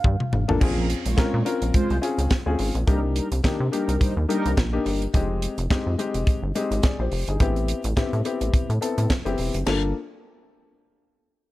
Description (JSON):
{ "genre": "early-eighties boogie funk", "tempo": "106 BPM", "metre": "4/4", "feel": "swing 56% on 16ths", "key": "unclear", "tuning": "A4 = 440 Hz", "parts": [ { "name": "rubbery square bass", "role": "bass", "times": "0.0-9.9 s", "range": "E1 to C3", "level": "-24 LUFS", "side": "equal", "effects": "none" }, { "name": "tight funk drum kit", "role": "drums", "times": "0.0-9.8 s", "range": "crash cymbal, hi-hat, kick drum, snare drum, toms", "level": "-24 LUFS", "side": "equal", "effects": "none" }, { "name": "warm baby grand piano", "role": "accompaniment", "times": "0.5-9.9 s", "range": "Ab3 to D5", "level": "-27 LUFS", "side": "left 4 dB", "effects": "none" }, { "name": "mellow synth brass", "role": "second line", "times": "0.8-4.5 s", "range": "Eb3 to Db5", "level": "-29 LUFS", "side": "right 1 dB", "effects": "chorus" } ], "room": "small room ambience", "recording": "none", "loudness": "-21 LUFS", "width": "side -17 dB against mid", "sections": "0.6-9.7 A section; 9.7-11.5 B section", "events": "drum fill 0.0-0.6", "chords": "0.0 Gm9; 0.6 Bbm9; 2.9 Cm9; 5.1 Fm9; 7.4 Am9; 9.7 Gm9" }